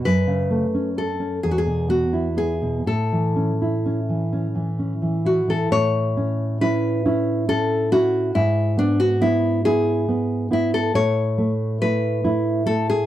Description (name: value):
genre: romantic duo for nylon-string guitar and classical guitar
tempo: 40-48 BPM (dotted quarters)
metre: 6/8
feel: rubato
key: A major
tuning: A4 = 441 Hz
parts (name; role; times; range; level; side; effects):
- nylon-string guitar; accompaniment; 0.0-13.1 s; E2 to A4; -21 LUFS; right 1 dB; none
- nylon-string guitar; melody; 0.1-13.1 s; D4 to C#5; -22 LUFS; left 2 dB; none
room: little or no reverb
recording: dry, close 1970s-style studio recording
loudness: -19 LUFS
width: side -12 dB against mid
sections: 0.0-5.7 A section; 5.7-13.1 A section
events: none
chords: 0.0 F#m; 1.4 E5; 2.9 A; 8.4 E/G#; 10.9 A